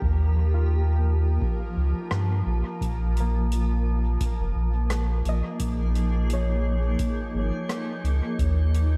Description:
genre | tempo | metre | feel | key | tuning
ambient dub | 86 BPM | 4/4 | swing 56% on 16ths | Bb dorian | A4 = 440 Hz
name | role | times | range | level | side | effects
granular cloud pad | sustained chords | 0.0-9.0 s | F3 to Ab4 | -34 LUFS | equal | built-in reverb
concert harp | arpeggios | 0.0-8.9 s | Bb3 to G5 | -40 LUFS | equal | dub echo
warm sub bass | bass | 0.0-9.0 s | F1 to G2 | -25 LUFS | equal | none
electronic kick drum | drums | 0.0-8.5 s | none | -32 LUFS | equal | none
bubbling stepped-filter texture | texture | 0.0-9.0 s | Bb3 to Bb4 | -44 LUFS | equal | chorus, built-in reverb
soft-mallet drum kit | drums | 2.1-8.9 s | hi-hat, rim click | -40 LUFS | equal | dub echo
room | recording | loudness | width
studio ambience | dark, warm production | -25 LUFS | mono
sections
0.0-9.0 A section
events
none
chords
0.0 Eb; 2.8 Bbm7; 8.4 Eb7(no3)

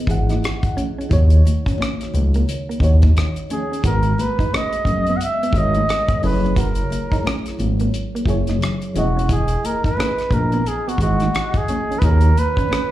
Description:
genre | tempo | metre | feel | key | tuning
R&B, neo-soul | 88 BPM | 4/4 | swing 61% on 16ths | unclear | A4 = 442 Hz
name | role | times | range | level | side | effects
hollow-body jazz guitar | second line | 0.0-12.8 s | A#3 to F#4 | -29 LUFS | right 4 dB | plate reverb, slapback echo
FM electric piano with tremolo | accompaniment | 0.0-12.9 s | D#3 to F#5 | -26 LUFS | left 1 dB | phaser, plate reverb
smooth synth bass | bass | 0.1-12.3 s | E1 to D#2 | -16 LUFS | equal | none
damped 70s drum kit | drums | 0.1-12.9 s | hi-hat, kick drum, rim click | -21 LUFS | equal | none
congas | percussion | 0.1-12.9 s | none | -30 LUFS | left 4 dB | none
warm flugelhorn | melody | 3.5-12.9 s | F#4 to F#5 | -22 LUFS | right 1 dB | slapback echo, plate reverb
room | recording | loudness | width
light reverb | live gig heard through the venue's PA, club reverb | -16 LUFS | side -14 dB against mid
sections
0.0-12.9 A section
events
none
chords
0.0 Emaj7; 1.1 D#m7; 3.8 G#m9; 6.2 F#9; 8.9 Emaj7; 12.0 D#m7

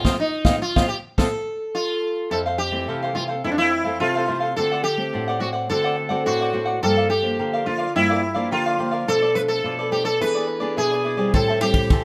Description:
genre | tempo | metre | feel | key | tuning
samba and choro | 106 BPM | 4/4 | straight | F major | A4 = 440 Hz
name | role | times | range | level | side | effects
sitar | melody | 0.0-12.0 s | D4 to B4 | -24 LUFS | equal | none
cavaquinho | accompaniment | 0.0-12.0 s | D4 to A5 | -29 LUFS | equal | none
nylon-string guitar | accompaniment | 0.0-12.0 s | F2 to G#4 | -30 LUFS | equal | none
swinging big-band drum kit | drums | 0.0-1.3, 11.3-12.0 s | kick drum, ride cymbal, rim click, snare drum | -22 LUFS | equal | none
room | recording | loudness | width
light reverb | none | -22 LUFS | mono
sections
0.0-2.3 A section; 2.3-12.0 B section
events
band accent 0.0-2.3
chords
0.0 F7; 2.3 Fmaj7; 4.6 D7; 6.8 Gm7; 9.1 Bm7b5; 10.2 E7; 11.3 Am7

